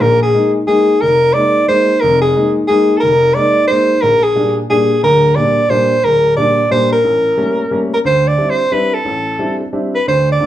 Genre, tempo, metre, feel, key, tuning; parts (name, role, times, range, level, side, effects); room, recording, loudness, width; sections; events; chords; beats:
jazz; 179 BPM; 3/4; swing 62% on 8ths; Bb mixolydian; A4 = 440 Hz
breathy soprano saxophone; melody; 0.0-10.5 s; Ab4 to D5; -12 LUFS; equal
clear upright piano; accompaniment; 0.0-10.5 s; D1 to E4; -16 LUFS; equal
wet club reverb, RT60 0.7 s; heard from further back in the room; -11 LUFS; side -12 dB against mid
0.0-8.0 A section; 8.0-10.5 B section
0.0 Bb7sus4; 4.0 Gm; 7.0 A7b9; 8.0 D9sus4
| 0.01 0.35 0.68 | 1.02 1.35 1.69 | 2.02 2.35 2.69 | 3.02 3.36 3.69 | 4.03 4.36 4.70 | 5.03 5.37 5.70 | 6.04 6.37 6.71 | 7.04 7.38 7.71 | 8.05 8.38 8.72 | 9.06 9.39 9.73 | 10.06 10.40